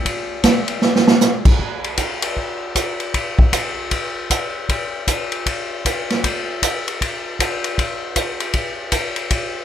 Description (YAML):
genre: jazz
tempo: 156 BPM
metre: 4/4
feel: swing 63% on 8ths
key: none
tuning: none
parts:
  - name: swinging big-band drum kit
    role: drums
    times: 0.1-9.4 s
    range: crash cymbal, hi-hat, kick drum, ride cymbal, snare drum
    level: -17 LUFS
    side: equal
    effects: none
room: little or no reverb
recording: none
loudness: -17 LUFS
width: side -10 dB against mid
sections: 0.0-1.6 A section; 1.6-9.6 B section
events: drum fill 0.8-1.2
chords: none